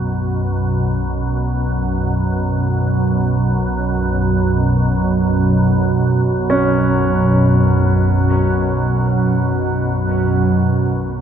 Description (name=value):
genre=dark ambient drone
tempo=free time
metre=none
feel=none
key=unclear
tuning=A4 = 440 Hz
part: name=warm grand piano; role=arpeggios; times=0.0-11.2 s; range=E2 to C#4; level=-23 LUFS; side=right 1 dB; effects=diffuse ambient delay
part: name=organ-like drone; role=drone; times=0.0-11.2 s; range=B1 to F#2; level=-14 LUFS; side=right 1 dB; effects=ensemble chorus, built-in reverb
part: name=quartz singing bowl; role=texture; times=0.0-11.2 s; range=B3 to B4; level=-40 LUFS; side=left 3 dB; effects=none
room=wet cathedral reverb, RT60 7.4 s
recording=in a vast, echoing space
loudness=-14 LUFS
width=side -8 dB against mid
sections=0.0-11.2 A section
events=fade-in on grand piano 0.0-11.2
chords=0.0 Bsus2